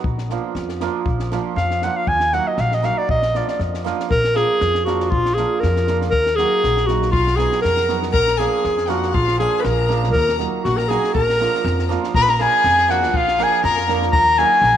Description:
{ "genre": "balkan folk, Balkan wedding band", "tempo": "119 BPM", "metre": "2/4", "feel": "swing 53% on 16ths", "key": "Bb phrygian dominant", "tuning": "A4 = 441 Hz", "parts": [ { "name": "hammered dulcimer", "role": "accompaniment", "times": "0.0-14.8 s", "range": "F3 to Bb4", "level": "-25 LUFS", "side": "right 10 dB", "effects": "none" }, { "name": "upright bass", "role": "bass", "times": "0.0-14.8 s", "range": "Bb1 to F2", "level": "-23 LUFS", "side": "left 1 dB", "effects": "none" }, { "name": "compact cocktail drum kit", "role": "percussion", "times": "0.0-14.7 s", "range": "kick drum, snare drum", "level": "-27 LUFS", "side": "left 3 dB", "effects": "none" }, { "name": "mellow clarinet", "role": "melody", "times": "1.6-14.8 s", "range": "F4 to Cb6", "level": "-17 LUFS", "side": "equal", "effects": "none" }, { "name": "rich violin", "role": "second line", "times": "7.1-14.8 s", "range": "F4 to Cb6", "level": "-26 LUFS", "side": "left 10 dB", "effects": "none" } ], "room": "moderate plate reverb, RT60 2.2 s", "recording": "1960s-style stereo with parts hard left and right", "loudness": "-16 LUFS", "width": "side -10 dB against mid", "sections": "0.0-4.1 A section; 4.1-12.1 B section; 12.1-14.8 B section", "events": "speeding up 0.0-14.8; clarinet solo 0.0-4.1", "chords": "0.0 Bb; 2.1 Ebm; 3.1 Bb; 6.1 Ebm; 7.1 B; 8.1 Bb; 10.1 Ebm; 11.1 Bb; 14.1 Ebm" }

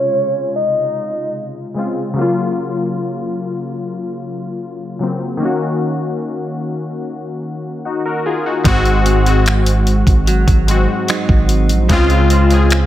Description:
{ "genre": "contemporary R&B", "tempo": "74 BPM", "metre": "4/4", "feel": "straight", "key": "unclear", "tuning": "A4 = 437 Hz", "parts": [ { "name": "soft octave-layered synth lead", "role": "melody", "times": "0.0-1.7 s", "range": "Db5 to Eb5", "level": "-17 LUFS", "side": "equal", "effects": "chorus, phaser, tape echo" }, { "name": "warm analog keys", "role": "accompaniment", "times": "0.0-12.9 s", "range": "Ab2 to Bb4", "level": "-18 LUFS", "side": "left 2 dB", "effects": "chorus" }, { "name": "direct-recorded clean electric guitar", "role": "arpeggios", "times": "8.7-12.9 s", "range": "Ab2 to Eb4", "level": "-21 LUFS", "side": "right 6 dB", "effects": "wide subtle chorus, tape echo" }, { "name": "long sustained 808-style bass", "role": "bass", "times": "8.7-12.9 s", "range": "Ab1 to Db2", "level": "-14 LUFS", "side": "right 1 dB", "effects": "none" }, { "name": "dusty soul sampler-style drum kit", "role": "drums", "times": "8.7-12.9 s", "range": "finger snaps, hi-hat, kick drum", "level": "-16 LUFS", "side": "equal", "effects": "none" } ], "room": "light reverb, digital ambience", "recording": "low-pass filter", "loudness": "-14 LUFS", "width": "side -13 dB against mid", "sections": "0.0-8.7 A section; 8.7-12.9 B section", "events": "filter sweep 0.0-8.7", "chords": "0.0 Dbmaj7; 2.2 Gbmaj7/Db; 5.4 Ebm7; 8.7 Ab7; 11.9 Dbmaj7" }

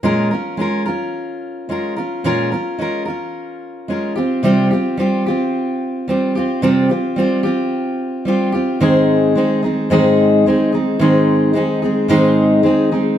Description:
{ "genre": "pop", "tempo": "110 BPM", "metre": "4/4", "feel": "straight", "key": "Ab major", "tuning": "A4 = 441 Hz", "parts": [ { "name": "fingerpicked steel-string acoustic guitar", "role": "solo", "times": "0.0-13.2 s", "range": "Ab2 to Bb4", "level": "-14 LUFS", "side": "equal", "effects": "none" } ], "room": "moderate studio reverb, RT60 0.8 s", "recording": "none", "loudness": "-14 LUFS", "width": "side -10 dB against mid", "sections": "0.0-8.8 A section; 8.8-13.2 B section", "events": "none", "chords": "0.0 Bbm7; 4.2 Csus4; 8.8 Ab" }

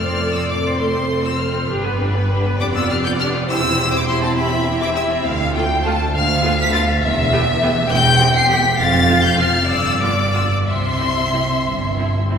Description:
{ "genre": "quick classical-period movement for string orchestra", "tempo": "60-69 BPM (dotted quarters)", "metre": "6/8", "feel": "rubato", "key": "C major", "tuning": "A4 = 440 Hz", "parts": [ { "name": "rich chamber violin section", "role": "melody", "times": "0.0-12.3 s", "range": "A5 to C7", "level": "-21 LUFS", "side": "left 4 dB", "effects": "none" }, { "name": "rich chamber violin section", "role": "second line", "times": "0.0-12.1 s", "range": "B4 to A5", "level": "-21 LUFS", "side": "left 1 dB", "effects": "none" }, { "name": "rich chamber viola section", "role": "accompaniment", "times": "0.0-12.4 s", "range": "A3 to C5", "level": "-24 LUFS", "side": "right 1 dB", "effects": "none" }, { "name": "rich chamber double bass section", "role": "bass", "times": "0.0-12.4 s", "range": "E1 to D2", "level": "-23 LUFS", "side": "right 2 dB", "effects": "none" }, { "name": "rich studio cello section", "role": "bass", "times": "0.0-12.4 s", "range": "D2 to C3", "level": "-22 LUFS", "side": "right 2 dB", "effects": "none" } ], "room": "wet church reverb, RT60 3.5 s", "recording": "recorded in a church or concert hall", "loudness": "-15 LUFS", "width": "side -7 dB against mid", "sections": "0.0-12.4 A section", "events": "none", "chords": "0.0 F; 1.7 G; 2.6 G7/F; 3.5 C/E; 5.3 Dm; 6.1 Bdim/D; 7.0 Em; 7.9 C/E; 8.8 F; 9.7 G7; 10.7 C" }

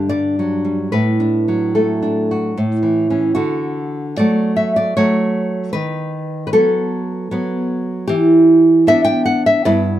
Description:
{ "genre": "romantic piece for solo classical guitar", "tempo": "76 BPM", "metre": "3/4", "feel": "rubato", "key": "D major", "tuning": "A4 = 440 Hz", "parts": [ { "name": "nylon-string guitar", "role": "solo", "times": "0.0-10.0 s", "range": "G2 to G5", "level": "-14 LUFS", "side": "equal", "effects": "none" } ], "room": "moderate studio reverb, RT60 0.8 s", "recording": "band playing live in one room", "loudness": "-14 LUFS", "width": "side -12 dB against mid", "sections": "0.0-3.4 A section; 3.4-10.0 B section", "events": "none", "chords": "0.0 G5; 0.9 D/A; 2.6 A; 3.4 D; 5.7 B7/D#; 8.1 Em7" }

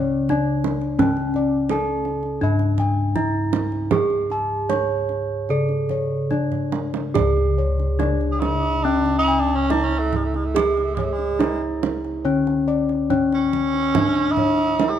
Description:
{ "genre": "Javanese gamelan", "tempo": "70-86 BPM", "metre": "4/4", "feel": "straight", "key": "C# pelog", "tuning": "A4 = 436 Hz", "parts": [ { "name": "gamelan-type bronze metallophone", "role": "melody", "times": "0.0-15.0 s", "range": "C#4 to C#5", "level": "-22 LUFS", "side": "left 2 dB", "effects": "none" }, { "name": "gamelan-type bossed gongs", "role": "arpeggios", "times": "0.0-15.0 s", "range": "C#5 to C#6", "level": "-29 LUFS", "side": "left 3 dB", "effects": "none" }, { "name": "gamelan-type bossed gongs", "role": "bass", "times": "0.0-14.9 s", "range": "C#2 to G#4-30c", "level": "-24 LUFS", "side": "equal", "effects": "none" }, { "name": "kendang", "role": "percussion", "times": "0.3-15.0 s", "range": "none", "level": "-27 LUFS", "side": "right 7 dB", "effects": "none" }, { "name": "raspy tenor saxophone", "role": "second line", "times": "8.3-15.0 s", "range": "G#3-35c to G#4-25c", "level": "-23 LUFS", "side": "right 4 dB", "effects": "none" } ], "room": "light reverb", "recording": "close, detailed microphones", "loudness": "-18 LUFS", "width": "side -10 dB against mid", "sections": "0.0-7.1 A section; 7.1-15.0 B section", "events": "drum fill 6.3-7.1", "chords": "none" }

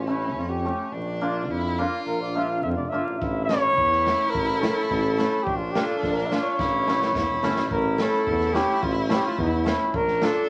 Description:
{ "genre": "klezmer", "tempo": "106 BPM", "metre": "2/4", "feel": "straight", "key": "A phrygian dominant", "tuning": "A4 = 436 Hz", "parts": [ { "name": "dark cornet", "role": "melody", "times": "0.0-10.5 s", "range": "E4 to F5", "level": "-27 LUFS", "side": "equal", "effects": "none" }, { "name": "warm violin", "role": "second line", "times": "0.0-10.5 s", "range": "C#4 to F4", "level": "-33 LUFS", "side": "equal", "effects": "none" }, { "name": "mellow tuba", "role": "bass", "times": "0.0-10.3 s", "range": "E1 to F2", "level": "-31 LUFS", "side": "equal", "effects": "none" }, { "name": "hammered dulcimer", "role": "accompaniment", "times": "0.1-10.4 s", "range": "A3 to G4", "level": "-31 LUFS", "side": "equal", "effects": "none" }, { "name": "crunchy breakbeat drum kit", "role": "drums", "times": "3.2-10.3 s", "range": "kick drum, snare drum", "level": "-33 LUFS", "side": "equal", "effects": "none" } ], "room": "wet studio reverb, RT60 0.6 s", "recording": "vinyl crackle", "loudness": "-24 LUFS", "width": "mono", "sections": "0.0-7.7 A section; 7.7-10.5 B section", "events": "speeding up 0.0-10.5; cornet solo 0.0-7.7; drum fill 6.6-7.7", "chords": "0.0 A; 0.9 Bb; 3.2 A; 5.5 Bb; 6.6 A; 9.9 Bb" }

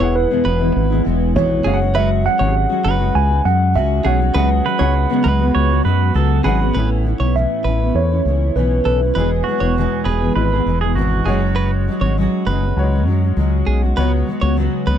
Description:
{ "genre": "acoustic pop", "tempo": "100 BPM", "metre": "4/4", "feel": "straight", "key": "A major", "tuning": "A4 = 440 Hz", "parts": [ { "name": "mellow tine electric piano", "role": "melody", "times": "0.0-10.0 s", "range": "B4 to G#5", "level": "-22 LUFS", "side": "right 1 dB", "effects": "medium stereo tremolo, tape echo" }, { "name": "fingerpicked steel-string acoustic guitar", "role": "accompaniment", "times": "0.0-15.0 s", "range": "E2 to G#4", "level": "-21 LUFS", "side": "equal", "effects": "double-tracked left and right" }, { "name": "warm upright piano", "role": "accompaniment", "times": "0.0-15.0 s", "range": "F#3 to F#5", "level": "-27 LUFS", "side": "left 5 dB", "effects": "none" }, { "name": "direct-recorded clean electric guitar", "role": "arpeggios", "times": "0.0-15.0 s", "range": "G#4 to C#5", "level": "-25 LUFS", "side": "right 4 dB", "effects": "none" }, { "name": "fingered electric bass", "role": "bass", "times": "0.0-15.0 s", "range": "E1 to F#2", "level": "-17 LUFS", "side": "equal", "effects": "none" }, { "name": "pedal steel guitar", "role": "second line", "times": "4.7-12.1 s", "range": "F#4 to C#5", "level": "-23 LUFS", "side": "right 10 dB", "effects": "none" } ], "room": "light reverb", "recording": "dry, close 1970s-style studio recording", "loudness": "-14 LUFS", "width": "side -9 dB against mid", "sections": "0.0-6.8 A section; 6.8-15.0 B section", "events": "none", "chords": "0.0 E; 1.7 F#sus2; 4.4 C#7sus4; 6.8 Aadd9; 9.2 E; 11.3 F#sus2; 14.0 C#7sus4" }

